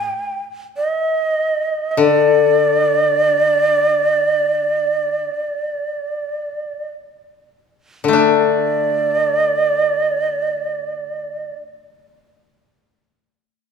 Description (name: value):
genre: japanese traditional, Japanese chamber music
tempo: free time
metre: none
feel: none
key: unclear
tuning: A4 = 444 Hz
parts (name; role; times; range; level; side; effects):
- breathy shakuhachi; melody; 0.0-11.6 s; D5 to G5; -17 LUFS; right 2 dB; none
- koto; accompaniment; 0.0-11.6 s; D3 to D4; -17 LUFS; left 8 dB; none
room: moderate scoring stage reverb, RT60 1.8 s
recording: minimal, uncompressed stereo recording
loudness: -15 LUFS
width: side -6 dB against mid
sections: 0.0-8.2 A section; 8.2-12.8 B section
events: slowing down 0.0-8.2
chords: none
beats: free time